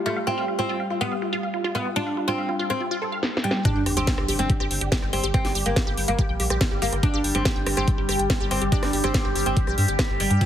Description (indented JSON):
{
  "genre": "psychedelic trance",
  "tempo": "142 BPM",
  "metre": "4/4",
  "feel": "straight",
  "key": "G minor",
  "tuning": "A4 = 441 Hz",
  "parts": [
    { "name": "overtone-sweeping drone", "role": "sustained chords", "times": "0.0-10.5 s", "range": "G3 to G4", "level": "-30 LUFS", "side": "left 1 dB", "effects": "chorus, built-in reverb, phaser, sidechain pumping" },
    { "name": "wide unison pluck", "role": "riff", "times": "0.0-10.5 s", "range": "F4 to G5", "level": "-30 LUFS", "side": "right 1 dB", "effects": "auto-pan, vintage 12-bit sampler grit, sidechain pumping, tape echo" },
    { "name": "oud", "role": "melody", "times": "0.1-10.5 s", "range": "G3 to D4", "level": "-27 LUFS", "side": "equal", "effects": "phaser, sidechain pumping, tape echo" },
    { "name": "drum and bass drum kit", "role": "drums", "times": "3.2-10.5 s", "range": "hi-hat, rim click, snare drum", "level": "-27 LUFS", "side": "equal", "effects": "low-pass filter on snare, low-pass filter on hats, low-pass filter on room" },
    { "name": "electronic kick drum", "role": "drums", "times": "3.7-10.5 s", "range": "none", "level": "-23 LUFS", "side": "equal", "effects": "none" },
    { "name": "sub drop", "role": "sound effects", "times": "3.7-5.3 s", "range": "none", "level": "-31 LUFS", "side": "equal", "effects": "none" },
    { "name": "round analog bass", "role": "bass", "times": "3.8-10.4 s", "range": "G1 to G2", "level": "-27 LUFS", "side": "equal", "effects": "none" }
  ],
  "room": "light reverb, digital ambience",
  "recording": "heavily compressed radio sound",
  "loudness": "-21 LUFS",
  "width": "side -10 dB against mid",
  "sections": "0.0-3.7 A section; 3.7-10.5 B section",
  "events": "filter sweep on synth arpeggio sound 0.0-3.7; drum fill 3.2-3.7; drop 3.7-10.5; impact 3.7-5.3",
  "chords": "0.0 G7(no3); 3.7 Gsus4",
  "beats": "| 0.27 0.69 1.12 1.54 | 1.96 2.38 2.81 3.23 | 3.65 4.07 4.50 4.92 | 5.34 5.76 6.19 6.61 | 7.03 7.45 7.88 8.30 | 8.72 9.14 9.57 9.99 | 10.41"
}